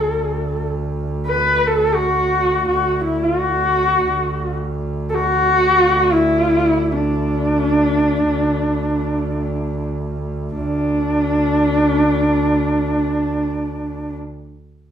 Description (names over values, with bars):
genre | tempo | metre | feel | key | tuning
mongolian traditional, Mongolian folk | free time | none | none | D gong mode | A4 = 440 Hz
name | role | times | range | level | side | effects
warm horsehead fiddle | melody | 0.0-14.2 s | D4 to B4 | -16 LUFS | equal | none
bright double bass | drone | 0.0-14.2 s | D2 | -23 LUFS | right 2 dB | none
room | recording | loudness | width
wet large studio reverb, RT60 0.9 s | band playing live in one room | -16 LUFS | side -9 dB against mid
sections
0.0-10.6 A section; 10.6-14.5 B section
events
slowing down 4.0-10.6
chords
none